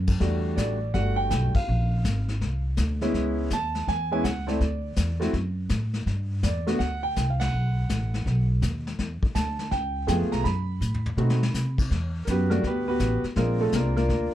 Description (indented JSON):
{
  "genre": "jazz piano trio",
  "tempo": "164 BPM",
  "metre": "4/4",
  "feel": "swing 65% on 8ths",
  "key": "E minor",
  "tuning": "A4 = 440 Hz",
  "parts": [
    { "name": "upright bass", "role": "bass", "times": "0.0-14.3 s", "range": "G1 to C3", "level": "-26 LUFS", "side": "equal", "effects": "none" },
    { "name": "vintage brush drum kit", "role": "drums", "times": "0.1-14.3 s", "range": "brushed snare drum, crash cymbal, hi-hat, kick drum, ride cymbal, snare drum, toms", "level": "-30 LUFS", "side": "left 2 dB", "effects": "none" },
    { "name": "clear grand piano", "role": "melody", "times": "0.2-14.3 s", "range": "G3 to B5", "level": "-27 LUFS", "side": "right 1 dB", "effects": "none" }
  ],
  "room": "little or no reverb",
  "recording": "dark, warm production",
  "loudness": "-23 LUFS",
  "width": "side -12 dB against mid",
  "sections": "0.2-11.9 A section; 11.9-14.3 B section",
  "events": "band accent 1.5, 7.3; drum fill 10.8-11.5; grand piano solo 11.9-14.3",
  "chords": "0.2 Em11; 1.7 A#9; 3.1 Amaj7; 4.6 Dadd9; 6.1 Gmaj7(no3); 7.5 B7; 9.0 E7sus4; 9.7 C#7b13; 10.4 F#madd11; 11.2 B7b9; 11.9 Em11; 13.4 A#9",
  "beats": "| 0.21 0.57 0.94 1.31 | 1.67 2.04 2.40 2.77 | 3.14 3.50 3.87 4.24 | 4.60 4.97 5.33 5.70 | 6.06 6.43 6.79 7.16 | 7.53 7.89 8.26 8.62 | 8.99 9.35 9.72 10.08 | 10.45 10.81 11.18 11.54 | 11.90 12.27 12.63 13.00 | 13.36 13.73 14.09"
}